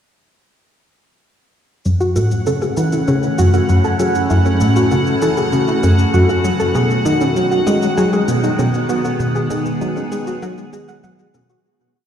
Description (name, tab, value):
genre	ambient, sequencer-driven space music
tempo	98 BPM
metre	4/4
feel	straight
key	F# dorian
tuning	A4 = 439 Hz
part	evolving wavetable pad	sustained chords	2.4-11.6 s	D#3 to A4	-20 LUFS	equal	chorus, built-in reverb, phaser
part	plucky analog bass	riff	1.9-11.6 s	F#2 to B3	-16 LUFS	equal	wide subtle chorus, ping-pong delay
part	shaker and bongos	percussion	1.9-11.6 s	none	-32 LUFS	left 3 dB	ping-pong delay
part	bubbling stepped-filter texture	texture	2.1-11.7 s	F#5	-26 LUFS	right 2 dB	chorus, built-in reverb
part	soft round pluck	arpeggios	2.0-11.6 s	F#3 to F#5	-21 LUFS	right 1 dB	chorus, auto-pan, ping-pong delay
room	wet huge ambient reverb, RT60 7.8 s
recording	played on a big sound system in a bare room, stone room reverb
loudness	-14 LUFS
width	side -9 dB against mid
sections	1.9-11.6 A section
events	fade-out 8.4-11.6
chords	1.9 F#m7; 6.8 B6